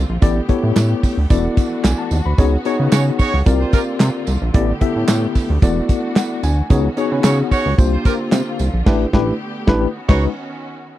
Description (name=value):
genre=early-eighties boogie funk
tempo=111 BPM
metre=4/4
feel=straight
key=unclear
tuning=A4 = 442 Hz
part: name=rich studio string section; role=sustained chords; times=0.0-11.0 s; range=D3 to G4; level=-29 LUFS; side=equal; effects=none
part: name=chorused synth bass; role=bass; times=0.0-10.3 s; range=E1 to C#3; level=-17 LUFS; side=equal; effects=none
part: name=tine electric piano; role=accompaniment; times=0.2-10.3 s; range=G#3 to B5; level=-20 LUFS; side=left 3 dB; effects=overdrive, medium stereo tremolo
part: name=damped 70s drum kit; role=drums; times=0.2-10.3 s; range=crash cymbal, handclaps, hi-hat, kick drum, snare drum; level=-14 LUFS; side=right 1 dB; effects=none
part: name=tambourine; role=percussion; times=0.2-8.7 s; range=none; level=-34 LUFS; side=right 21 dB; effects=none
part: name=warm horn section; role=second line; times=2.6-10.2 s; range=F4 to C#5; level=-22 LUFS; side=right 3 dB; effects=none
room=little or no reverb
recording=dry, close 1970s-style studio recording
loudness=-14 LUFS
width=side -14 dB against mid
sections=0.0-11.0 A section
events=tine electric piano fill 5.9-6.7; band accent 8.9-11.0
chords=0.2 A9sus4; 1.3 E9sus4; 2.4 C#9sus4; 3.5 C9sus4; 4.5 A9sus4; 5.6 E9sus4; 6.7 C#9sus4; 7.8 C9sus4; 8.9 A9sus4; 10.0 C#9sus4